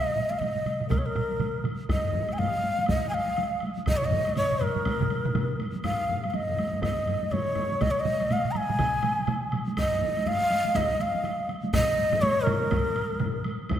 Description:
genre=japanese traditional, taiko drum ensemble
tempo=122 BPM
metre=4/4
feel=swing 60% on 16ths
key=Eb suspended pentatonic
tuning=A4 = 440 Hz
part: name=breathy mellow shakuhachi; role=melody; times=0.0-13.4 s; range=Bb4 to Bb5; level=-27 LUFS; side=equal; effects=none
part: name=taiko ensemble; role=percussion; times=0.2-13.8 s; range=none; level=-32 LUFS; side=right 1 dB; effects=none
part: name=taiko ensemble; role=percussion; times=0.2-13.3 s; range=none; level=-31 LUFS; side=right 3 dB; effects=none
part: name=woodblock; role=percussion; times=0.3-13.8 s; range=none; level=-39 LUFS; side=right 1 dB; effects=none
part: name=taiko ensemble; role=percussion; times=0.9-13.8 s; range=none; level=-33 LUFS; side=equal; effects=none
part: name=taiko ensemble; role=percussion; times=1.9-13.8 s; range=none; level=-33 LUFS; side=left 4 dB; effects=none
room=wet scoring stage reverb, RT60 1.7 s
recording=none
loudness=-24 LUFS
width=side -10 dB against mid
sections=0.0-13.7 A section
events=none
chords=none

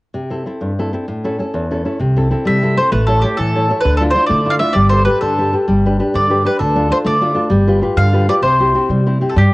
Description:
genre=italian folk, Italian serenade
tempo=130 BPM (dotted quarters)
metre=6/8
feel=rubato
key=C major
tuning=A4 = 440 Hz
part: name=nylon-string guitar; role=accompaniment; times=0.1-9.5 s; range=E2 to C#5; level=-17 LUFS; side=left 1 dB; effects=cassette tape
part: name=upright bass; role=bass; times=2.0-9.5 s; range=G1 to D3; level=-16 LUFS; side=equal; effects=none
part: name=bowl-back mandolin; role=melody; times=2.5-9.5 s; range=G4 to F5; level=-16 LUFS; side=equal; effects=cassette tape
room=light reverb, small room reverb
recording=home recording on cassette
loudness=-13 LUFS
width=side -21 dB against mid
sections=0.1-2.0 A section; 2.0-9.4 B section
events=none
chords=0.1 C6; 1.1 A; 2.0 C6; 2.9 A; 3.9 Dmadd9; 4.8 Gadd9; 5.7 G; 6.6 Dm; 7.5 G7; 8.4 C

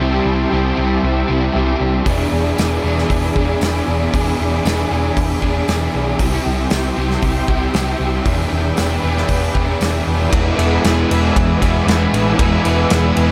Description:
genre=rock, shoegaze and dream pop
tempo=116 BPM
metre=4/4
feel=straight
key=unclear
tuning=A4 = 440 Hz
part: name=analog string pad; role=sustained chords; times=0.0-13.3 s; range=G4 to E6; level=-27 LUFS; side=equal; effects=ensemble chorus
part: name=overdriven electric guitar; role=riff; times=0.0-13.3 s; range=C3 to G#4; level=-25 LUFS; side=equal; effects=reverse reverb
part: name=overdriven semi-hollow guitar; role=riff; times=0.0-13.3 s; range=C3 to G#4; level=-22 LUFS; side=equal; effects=analog chorus
part: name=hollow-body short-scale picked electric bass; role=bass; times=0.0-13.3 s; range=E1 to C2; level=-22 LUFS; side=equal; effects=none
part: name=loose indie drum kit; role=drums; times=2.1-13.3 s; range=hi-hat, kick drum, ride cymbal, snare drum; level=-23 LUFS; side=equal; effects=none
part: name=tambourine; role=percussion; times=2.6-9.9 s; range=none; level=-35 LUFS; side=equal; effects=none
room=light reverb, studio reverb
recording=none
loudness=-17 LUFS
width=mono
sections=0.0-10.3 A section; 10.3-13.3 B section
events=none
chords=0.0 C6; 2.1 E7; 6.2 C; 8.3 E5; 10.3 E

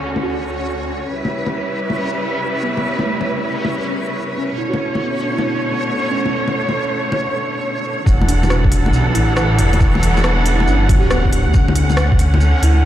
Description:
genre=future garage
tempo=138 BPM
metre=4/4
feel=swing 67% on 16ths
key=E dorian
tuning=A4 = 438 Hz
part: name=muted felt-like synth keys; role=accompaniment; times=0.0-12.9 s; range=A3 to G4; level=-25 LUFS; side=right 3 dB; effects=chorus, sidechain pumping, ping-pong delay
part: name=warm symphonic string section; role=sustained chords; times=0.0-12.9 s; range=D2 to F#5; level=-20 LUFS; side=right 1 dB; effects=sidechain pumping
part: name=backwards swelling texture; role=texture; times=0.0-12.9 s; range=C#4 to C#5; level=-28 LUFS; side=left 1 dB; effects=built-in reverb
part: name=organic electronic drum kit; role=drums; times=0.2-12.7 s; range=bongos, hi-hat, rim click, shaker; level=-23 LUFS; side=left 2 dB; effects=low-pass filter on perc, low-pass filter on hats, low-pass filter on snare
part: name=dark detuned saw bass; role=bass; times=8.1-12.9 s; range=D1 to D2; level=-15 LUFS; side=equal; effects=tube saturation, sidechain pumping
part: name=electronic kick drum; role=drums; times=8.1-12.2 s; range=none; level=-14 LUFS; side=equal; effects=none
room=light reverb, digital ambience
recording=played on a big sound system in a bare room, large studio reverb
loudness=-15 LUFS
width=side -12 dB against mid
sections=0.0-8.1 A section; 8.1-12.9 B section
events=filter sweep on drum 0.0-8.1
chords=0.0 Dmaj7; 1.1 A9/C#; 4.6 Bm9; 8.1 Em11; 11.5 Dmaj7

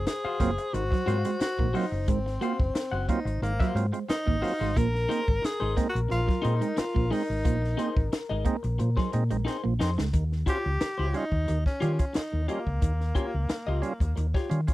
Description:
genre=funk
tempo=89 BPM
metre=4/4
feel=straight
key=unclear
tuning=A4 = 440 Hz
part: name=breathy tenor saxophone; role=melody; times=0.0-14.5 s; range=Bb3 to Bb4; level=-32 LUFS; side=equal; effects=none
part: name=breathy trombone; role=second line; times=0.0-9.8 s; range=Bb4 to C5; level=-37 LUFS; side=left 6 dB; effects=tube saturation
part: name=hollow-body short-scale fingered electric bass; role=bass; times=0.0-14.7 s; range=Gb1 to Eb3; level=-28 LUFS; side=equal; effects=none
part: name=clean electric guitar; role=accompaniment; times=0.1-14.7 s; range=Eb4 to Gb5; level=-35 LUFS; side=left 4 dB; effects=none
part: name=compact cocktail drum kit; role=drums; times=0.1-14.7 s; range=hi-hat, kick drum, snare drum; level=-28 LUFS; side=equal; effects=none
part: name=electric guitar at the edge of break-up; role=riff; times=0.4-10.1 s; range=Gb3 to Bb3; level=-32 LUFS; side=right 7 dB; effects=none
part: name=percussive tonewheel organ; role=stabs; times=0.4-14.7 s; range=Ab2 to F4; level=-33 LUFS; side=right 4 dB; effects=overdrive
room=little or no reverb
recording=dry, close 1970s-style studio recording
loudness=-25 LUFS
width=side -17 dB against mid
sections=0.0-10.1 A section; 10.1-14.7 B section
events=drum fill 9.5-10.1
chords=0.0 Ab13; 4.8 Bb9sus4; 10.1 Eb9

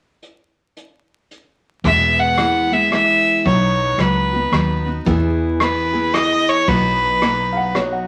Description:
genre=honky-tonk and classic country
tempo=112 BPM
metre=3/4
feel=swing 64% on 8ths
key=E major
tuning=A4 = 440 Hz
part: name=soft brush drum kit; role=drums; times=0.2-7.9 s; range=hi-hat, kick drum, rim click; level=-25 LUFS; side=equal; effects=none
part: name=picked steel-string acoustic guitar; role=accompaniment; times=1.8-8.1 s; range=E2 to G#4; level=-23 LUFS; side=equal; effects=none
part: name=vintage muted fingered electric bass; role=bass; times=1.8-8.1 s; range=B1 to E2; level=-26 LUFS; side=equal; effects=none
part: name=clear fiddle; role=melody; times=1.9-7.8 s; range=B4 to F#5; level=-19 LUFS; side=equal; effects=none
part: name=dark upright piano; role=second line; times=7.5-8.1 s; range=C#5 to F#5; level=-23 LUFS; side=equal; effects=none
room=wet studio reverb, RT60 0.6 s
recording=vinyl crackle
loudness=-17 LUFS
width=mono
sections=0.2-1.8 A section; 1.8-5.1 B section; 5.1-8.1 C section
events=none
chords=0.2 N.C.; 1.8 E; 3.5 B; 5.1 E; 6.7 B

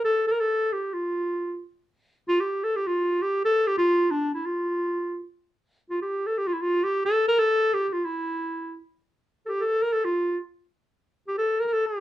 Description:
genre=klezmer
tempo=134 BPM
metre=4/4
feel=straight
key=unclear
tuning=A4 = 440 Hz
part: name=clear clarinet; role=solo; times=0.0-12.0 s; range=D4 to Bb4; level=-23 LUFS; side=equal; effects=none
room=wet studio reverb, RT60 0.5 s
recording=dark, warm production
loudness=-23 LUFS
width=side -14 dB against mid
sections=0.0-1.8 A section; 1.8-12.0 B section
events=none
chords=none

